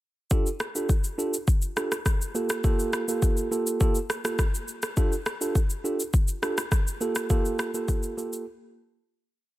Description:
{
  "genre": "afrobeats",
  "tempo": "103 BPM",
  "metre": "4/4",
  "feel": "straight",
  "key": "F major",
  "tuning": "A4 = 440 Hz",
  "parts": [
    { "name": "mellow tine electric piano", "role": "accompaniment", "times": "0.3-8.4 s", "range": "Bb3 to A4", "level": "-29 LUFS", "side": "right 2 dB", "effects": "none" },
    { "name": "afro-pop drum kit", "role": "drums", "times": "0.3-8.5 s", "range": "kick drum, rim click, shaker", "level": "-25 LUFS", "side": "left 1 dB", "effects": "overdrive" }
  ],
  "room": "little or no reverb",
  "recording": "dense, heavily limited modern master",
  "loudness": "-24 LUFS",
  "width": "side -16 dB against mid",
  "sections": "0.3-9.6 verse",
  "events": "fade-out 7.3-9.6; break 8.5-9.6",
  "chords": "0.3 F69; 2.3 Gm9; 5.0 F69; 7.0 Gm9",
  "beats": "| 0.31 0.89 1.48 2.06 | 2.64 3.22 3.81 4.39 | 4.97 5.55 6.14 6.72 | 7.30 7.88"
}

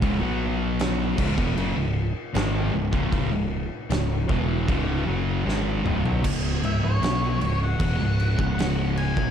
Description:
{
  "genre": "stoner and doom metal",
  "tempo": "77 BPM",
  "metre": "4/4",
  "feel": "straight",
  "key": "C# minor",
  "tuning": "A4 = 436 Hz",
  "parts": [
    { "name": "thick fuzz guitar", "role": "riff", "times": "0.0-9.3 s", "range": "C#2 to B3", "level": "-28 LUFS", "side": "left 7 dB", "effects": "distortion" },
    { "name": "thick fuzz guitar", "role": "riff", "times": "0.0-9.3 s", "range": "C#2 to B3", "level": "-28 LUFS", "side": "right 7 dB", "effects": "distortion" },
    { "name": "tight distorted guitar", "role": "riff", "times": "0.0-6.2 s", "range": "C#2 to B3", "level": "-32 LUFS", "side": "equal", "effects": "distortion" },
    { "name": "growling picked electric bass", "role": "bass", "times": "0.0-9.3 s", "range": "C#1 to B1", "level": "-28 LUFS", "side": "equal", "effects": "overdrive, tube saturation" },
    { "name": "oversized low-tuned drum kit", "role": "drums", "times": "0.0-9.3 s", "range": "crash cymbal, kick drum, snare drum, toms", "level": "-27 LUFS", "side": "equal", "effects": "none" },
    { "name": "octave-fuzz lead guitar", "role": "melody", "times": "6.7-9.3 s", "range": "C#5 to G#5", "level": "-30 LUFS", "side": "left 1 dB", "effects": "distortion, ping-pong delay" }
  ],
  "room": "light reverb",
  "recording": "dark, warm production",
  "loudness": "-22 LUFS",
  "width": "side -8 dB against mid",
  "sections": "0.0-6.2 A section; 6.2-9.3 B section",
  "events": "drum fill 5.5-6.2; lead electric guitar solo 6.2-9.3",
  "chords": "0.2 B5; 1.2 C#m",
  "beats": "| 0.02 0.80 1.57 2.35 | 3.12 3.90 4.68 5.46 | 6.24 7.02 7.80 8.58"
}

